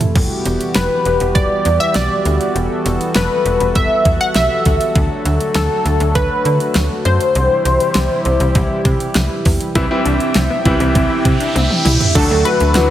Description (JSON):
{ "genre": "synth-pop", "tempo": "100 BPM", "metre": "4/4", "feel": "straight", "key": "unclear", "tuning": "A4 = 440 Hz", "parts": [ { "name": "warm analog pad", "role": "sustained chords", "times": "0.0-12.9 s", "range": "C3 to G5", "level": "-21 LUFS", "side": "equal", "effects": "chorus" }, { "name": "pop drum kit", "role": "drums", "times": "0.0-12.9 s", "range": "crash cymbal, hi-hat, kick drum, snare drum, toms", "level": "-18 LUFS", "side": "equal", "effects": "none" }, { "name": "slap-like FM bass", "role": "bass", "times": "0.2-12.9 s", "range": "E1 to D3", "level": "-18 LUFS", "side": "equal", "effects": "none" }, { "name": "funky polysynth comp", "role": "melody", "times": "0.8-12.9 s", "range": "A4 to F#5", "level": "-17 LUFS", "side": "left 1 dB", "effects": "chorus, tape echo" }, { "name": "bright concert grand piano", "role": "accompaniment", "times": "9.8-12.9 s", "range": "E3 to F#4", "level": "-18 LUFS", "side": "right 1 dB", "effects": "none" }, { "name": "wide unison pluck", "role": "arpeggios", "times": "9.8-12.9 s", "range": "B3 to F#4", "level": "-23 LUFS", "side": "left 1 dB", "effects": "tape echo" }, { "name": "riser", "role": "sound effects", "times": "10.9-12.2 s", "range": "none", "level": "-22 LUFS", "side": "equal", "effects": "none" } ], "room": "moderate concert hall reverb, RT60 2.3 s", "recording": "heavily compressed radio sound", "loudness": "-13 LUFS", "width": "side -12 dB against mid", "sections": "0.0-9.8 A section; 9.8-12.2 B section", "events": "drum fill 0.0, 11.6-12.2; riser 10.9-12.2", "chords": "0.2 Emadd9; 5.0 D; 7.4 C; 12.2 D" }